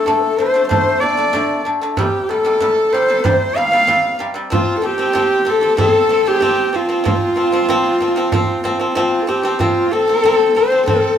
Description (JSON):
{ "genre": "mongolian traditional, Mongolian folk", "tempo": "94 BPM", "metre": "4/4", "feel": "straight", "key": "F gong mode", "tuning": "A4 = 438 Hz", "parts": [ { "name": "warm horsehead fiddle", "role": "melody", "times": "0.0-11.2 s", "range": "F4 to F5", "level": "-16 LUFS", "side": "equal", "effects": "none" }, { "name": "large dizi", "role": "second line", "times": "0.0-11.2 s", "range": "F4 to F5", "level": "-21 LUFS", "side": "left 2 dB", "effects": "none" }, { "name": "pipa", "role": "arpeggios", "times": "0.0-11.1 s", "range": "C3 to C4", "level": "-20 LUFS", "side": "left 1 dB", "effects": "none" }, { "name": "frame drum", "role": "percussion", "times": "0.1-11.0 s", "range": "none", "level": "-22 LUFS", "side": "right 2 dB", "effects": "none" } ], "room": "moderate studio reverb, RT60 0.9 s", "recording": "band playing live in one room", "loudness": "-13 LUFS", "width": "side -9 dB against mid", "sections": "0.0-9.6 A section; 9.6-11.2 B section", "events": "none", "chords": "0.0 D5; 2.0 C5; 4.5 F5" }